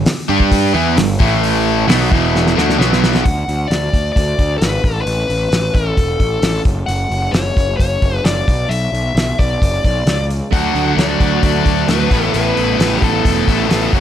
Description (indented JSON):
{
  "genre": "classic rock",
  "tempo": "132 BPM",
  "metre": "4/4",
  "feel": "straight",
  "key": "unclear",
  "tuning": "A4 = 441 Hz",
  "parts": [
    { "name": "distorted electric guitar", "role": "riff", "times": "0.0-3.2, 10.5-14.0 s", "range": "E2 to A4", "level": "-18 LUFS", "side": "right 11 dB", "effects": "distortion" },
    { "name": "fuzz picked electric bass", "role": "bass", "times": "0.0-14.0 s", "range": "E1 to G2", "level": "-19 LUFS", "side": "equal", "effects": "overdrive" },
    { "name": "cloth-damped thuddy drum kit", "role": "drums", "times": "0.1-14.0 s", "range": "hi-hat, kick drum, snare drum", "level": "-17 LUFS", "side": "equal", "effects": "none" },
    { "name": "distorted electric guitar", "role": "riff", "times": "0.3-3.2, 10.5-14.0 s", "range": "E2 to G4", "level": "-18 LUFS", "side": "left 12 dB", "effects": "distortion" },
    { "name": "dark smooth lead guitar", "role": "melody", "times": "3.2-13.9 s", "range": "G4 to F#5", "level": "-20 LUFS", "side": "left 3 dB", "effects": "overdrive" }
  ],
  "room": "light reverb",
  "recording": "none",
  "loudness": "-13 LUFS",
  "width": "side -10 dB against mid",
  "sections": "0.0-3.2 A section; 3.2-14.0 B section",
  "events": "drum fill 2.3-3.2",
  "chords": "0.0 G5; 1.2 A5; 1.9 B5; 2.1 E5; 2.6 D5; 2.8 B5; 3.2 D; 4.8 Asus2; 6.7 F#5; 8.5 Bm; 10.5 D; 12.1 Asus2",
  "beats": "0.06 0.52 0.97 | 1.43 1.88 2.33 2.79 | 3.24 3.70 4.15 4.61 | 5.06 5.52 5.97 6.43 | 6.88 7.34 7.79 8.25 | 8.70 9.15 9.61 10.06 | 10.52 10.97 11.43 11.88 | 12.34 12.79 13.25 13.70"
}